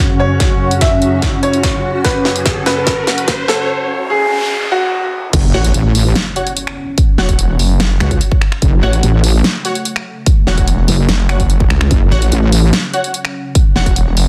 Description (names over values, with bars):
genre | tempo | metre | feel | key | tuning
heavy wobble dubstep | 146 BPM | 4/4 | half-time | F# minor | A4 = 440 Hz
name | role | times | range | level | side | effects
bright baby grand piano | melody | 0.0-5.3 s | F#4 to E5 | -20 LUFS | equal | digital delay
lush unison pad | sustained chords | 0.0-14.3 s | F#2 to F#4 | -24 LUFS | equal | chorus, sidechain pumping
riser, noise sweep and impact | sound effects | 1.0-7.0 s | none | -25 LUFS | equal | none
granular cloud pad | texture | 0.0-3.7 s | C#4 to C#6 | -25 LUFS | equal | built-in reverb, sidechain pumping
big-room dance drum kit | drums | 0.4-14.3 s | crash cymbal, finger snaps, hi-hat, snare drum | -21 LUFS | equal | high-pass filter on hats, soft clipping on snare, high-pass filter on snare, high-pass filter on cymbals
electronic kick drum | drums | 0.4-13.9 s | none | -16 LUFS | equal | none
wobble bass | bass | 5.3-12.7 s | F#1 to C#2 | -14 LUFS | equal | chorus, overdrive
orchestra-hit-like synth stab | stabs | 5.5-13.9 s | F#4 to F#5 | -24 LUFS | equal | built-in reverb, phaser, digital delay
snarling distorted saw bass | bass | 5.5-14.3 s | E1 to C#2 | -16 LUFS | equal | distortion, overdrive
room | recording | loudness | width
light reverb | dense, heavily limited modern master, high-pass filter | -14 LUFS | mono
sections
0.0-5.3 A section; 5.3-14.3 B section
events
build-up 0.0-5.3; drum fill 0.0-3.7; filter sweep 0.0-5.3; riser 1.0-3.7; noise sweep 3.7-5.3; drop 5.3-14.3; impact 5.3-7.0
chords
0.0 F#5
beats
| 0.40 0.81 1.22 1.63 | 2.04 2.46 2.87 3.28 | 3.69 4.10 4.51 4.92 | 5.33 5.74 6.16 6.57 | 6.98 7.39 7.80 8.21 | 8.62 9.03 9.44 9.85 | 10.26 10.68 11.09 11.50 | 11.91 12.32 12.73 13.14 | 13.55 13.96